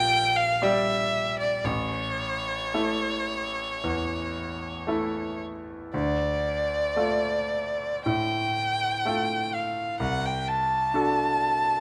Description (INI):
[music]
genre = classical, romantic duo for violin and grand piano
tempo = 52-65 BPM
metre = 4/4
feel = rubato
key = D minor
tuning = A4 = 440 Hz
[part]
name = warm violin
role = melody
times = 0.0-11.8 s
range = C#5 to A5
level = -28 LUFS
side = equal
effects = none
[part]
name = bright grand piano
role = accompaniment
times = 0.0-11.8 s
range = A1 to D5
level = -32 LUFS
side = equal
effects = none
[sound]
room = moderate recital hall reverb, RT60 1.8 s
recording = close, detailed microphones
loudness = -27 LUFS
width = mono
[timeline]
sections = 0.0-11.8 A section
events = none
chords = 0.0 Gm/Bb; 1.6 A; 5.9 Dm; 10.0 D7/C